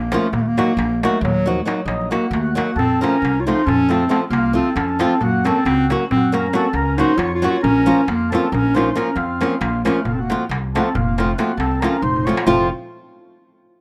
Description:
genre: balkan folk, Balkan wedding band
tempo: 272 BPM (eighths)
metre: 11/8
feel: straight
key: F phrygian dominant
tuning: A4 = 440 Hz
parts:
  - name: dark clarinet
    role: melody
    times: 0.0-12.7 s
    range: F3 to F4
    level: -22 LUFS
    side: equal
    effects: plate reverb
  - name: upright bass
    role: bass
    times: 0.0-12.7 s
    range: F1 to Gb2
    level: -26 LUFS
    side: equal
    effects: none
  - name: darbuka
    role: percussion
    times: 0.0-12.7 s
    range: none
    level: -29 LUFS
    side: equal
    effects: none
  - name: flamenco guitar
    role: accompaniment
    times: 0.1-12.7 s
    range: F3 to Gb4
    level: -22 LUFS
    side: equal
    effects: plate reverb
  - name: mellow accordion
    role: second line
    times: 1.9-12.7 s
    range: C4 to Db5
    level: -27 LUFS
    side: equal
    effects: plate reverb
room: moderate studio reverb, RT60 0.6 s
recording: rough home demo mix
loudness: -18 LUFS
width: mono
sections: 0.0-12.5 A section; 12.5-13.8 B section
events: drum fill 12.0-12.5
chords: 0.3 Ebm; 2.8 F; 5.2 Gb; 7.6 Bbm; 10.0 F

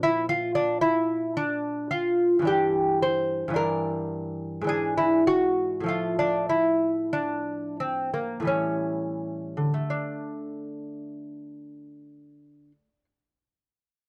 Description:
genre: classical, baroque-style dance for lute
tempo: 41-57 BPM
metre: 3/4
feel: rubato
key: D minor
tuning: A4 = 440 Hz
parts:
  - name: lute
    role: solo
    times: 0.0-13.0 s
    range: G2 to C5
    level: -26 LUFS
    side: equal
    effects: none
room: light reverb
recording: dry, close 1970s-style studio recording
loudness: -26 LUFS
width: mono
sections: 0.0-9.9 A section; 9.9-14.1 B section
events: slowing down 0.8-9.9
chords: 0.0 Bb5; 2.5 Em7b5/G; 4.7 E7/G#; 5.9 Bbmaj9#11/A; 8.5 A7; 9.9 D5

